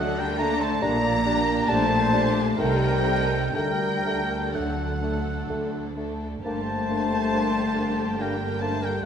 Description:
classical, slow romantic movement for symphony orchestra; 59-72 BPM; 3/4; rubato; G minor; A4 = 438 Hz
dark studio violin section; melody; 0.0-9.0 s; F#5 to Bb5; -32 LUFS; left 6 dB
dark studio violin section; second line; 0.0-9.1 s; G3 to A4; -36 LUFS; left 4 dB
large flute ensemble; second line; 0.0-9.1 s; A4 to D5; -31 LUFS; equal
mellow clarinet; second line; 0.0-8.8 s; D4 to Eb4; -36 LUFS; equal
warm oboe; second line; 0.0-9.1 s; F#5 to Bb5; -29 LUFS; right 1 dB
dark bassoon; accompaniment; 0.0-9.1 s; G3 to Bb3; -34 LUFS; equal
dark studio viola section; accompaniment; 0.0-9.1 s; D3 to D4; -34 LUFS; right 2 dB
mellow French horn section; sustained chords; 0.0-9.0 s; F#3 to Bb3; -29 LUFS; left 4 dB
rich studio double bass section; bass; 0.0-9.1 s; G1 to D2; -32 LUFS; right 4 dB
rich symphonic cello section; bass; 0.0-9.1 s; D2 to D3; -31 LUFS; right 3 dB
wet scoring stage reverb, RT60 1.9 s; -22 LUFS; side -8 dB against mid
0.0-9.1 A section
0.0 D; 0.8 Gm/Bb; 2.6 Adim/C; 3.5 D; 6.4 Gm
| 0.83 1.68 2.58 | 3.55 4.54 5.50 | 6.44 7.34 8.20 | 9.03

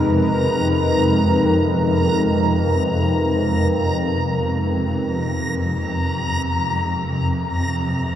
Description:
dark ambient drone; free time; A4 = 441 Hz
sweeping resonant pad; sustained chords; 0.0-8.2 s; Ab3 to Cb5; -21 LUFS; equal; chorus
bronze singing bowl; arpeggios; 0.0-8.2 s; Bb2 to F3; -36 LUFS; right 3 dB
swarming drone; drone; 0.0-8.2 s; F2 to C3; -20 LUFS; equal; built-in reverb
backwards swelling texture; texture; 0.0-8.2 s; Bb5; -26 LUFS; equal; built-in reverb
wet huge ambient reverb, RT60 8.1 s; dark, warm production; -17 LUFS; side -10 dB against mid
0.0-8.2 A section
0.0 Abm
free time

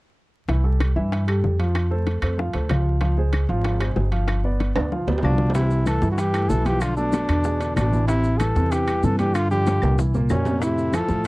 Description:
Afro-Cuban jazz; 189 BPM; 4/4; straight; C major; A4 = 440 Hz
warm concert grand piano; accompaniment; 0.5-11.3 s; A2 to F5; -27 LUFS; right 2 dB
upright bass; bass; 0.5-11.3 s; G1 to G2; -22 LUFS; equal
bongos; percussion; 0.5-11.3 s; -29 LUFS; left 4 dB
timbales; percussion; 0.5-11.1 s; -32 LUFS; right 3 dB
claves; percussion; 0.8-11.1 s; -34 LUFS; left 2 dB
mellow trumpet; melody; 5.2-11.3 s; Db4 to A4; -24 LUFS; equal
breathy baritone saxophone; second line; 5.2-11.3 s; Bb2 to F3; -28 LUFS; left 1 dB
congas; percussion; 5.5-11.3 s; -30 LUFS; left 1 dB
maracas; percussion; 5.5-11.3 s; -46 LUFS; right 2 dB
light reverb; dark, warm production, vinyl crackle; -19 LUFS; side -21 dB against mid
0.5-5.6 A section; 5.6-11.3 B section
drum fill 4.8-5.6, 9.8-10.6
0.5 C6; 1.8 F; 3.0 Dbmaj7; 4.3 G7; 5.6 C6; 6.8 Bm7b5; 7.5 E7; 8.1 Am7; 9.4 Gm7; 10.0 C7b9; 10.6 Fmaj7
| 0.48 0.80 1.12 1.44 | 1.75 2.07 2.39 2.70 | 3.02 3.34 3.65 3.97 | 4.29 4.60 4.92 5.24 | 5.55 5.87 6.19 6.50 | 6.82 7.14 7.45 7.77 | 8.09 8.40 8.72 9.04 | 9.36 9.67 9.99 10.30 | 10.62 10.94 11.26

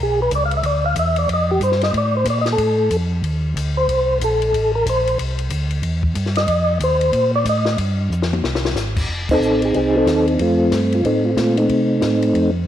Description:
soul jazz organ trio; 185 BPM; 4/4; swing 63% on 8ths; F mixolydian; A4 = 436 Hz
percussive tonewheel organ; melody; 0.0-12.5 s; A3 to F5; -17 LUFS; equal; slow rotary speaker, chorus vibrato
mellow tonewheel organ; bass; 0.0-12.7 s; F1 to C3; -21 LUFS; equal; chorus vibrato, slow rotary speaker
compact cocktail drum kit; drums; 0.3-12.4 s; crash cymbal, hi-hat, kick drum, ride cymbal, snare drum, toms; -26 LUFS; left 4 dB
moderate echo chamber reverb, RT60 1.6 s; 1960s-style stereo; -16 LUFS; side -11 dB against mid
0.0-9.1 A section; 9.1-12.7 B section
tonewheel organ solo 0.0-9.1; drum fill 8.1-8.8; band accent 9.2
0.0 E7(no3)/B; 1.3 F7; 3.9 C7; 6.5 F7; 7.8 Fsus2; 8.4 Ab; 9.1 F7
0.31 0.63 0.96 | 1.28 1.61 1.93 2.26 | 2.58 2.91 3.23 3.56 | 3.88 4.21 4.53 4.86 | 5.18 5.51 5.83 6.16 | 6.48 6.81 7.13 7.46 | 7.78 8.11 8.43 8.76 | 9.08 9.41 9.73 10.06 | 10.39 10.71 11.04 11.37 | 11.69 12.02 12.34

